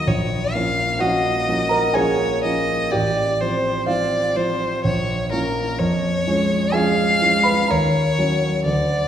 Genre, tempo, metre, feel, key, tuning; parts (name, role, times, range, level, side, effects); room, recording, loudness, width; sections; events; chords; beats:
classical, romantic duo for violin and grand piano; 63 BPM; 3/4; rubato; A4 = 440 Hz
rich violin; melody; 0.0-9.1 s; Bb4 to F5; -21 LUFS; left 1 dB
warm concert grand piano; accompaniment; 0.0-9.1 s; A1 to B5; -20 LUFS; right 1 dB
wet recital hall reverb, RT60 1.7 s; heard from further back in the room; -17 LUFS; side -9 dB against mid
0.0-9.1 A section
0.1 Bbm; 2.9 F/A; 4.8 Bbm; 5.8 C#/E#; 7.7 D#m7
| 0.06 1.00 1.95 | 2.92 3.88 4.84 | 5.79 6.74 7.71 | 8.65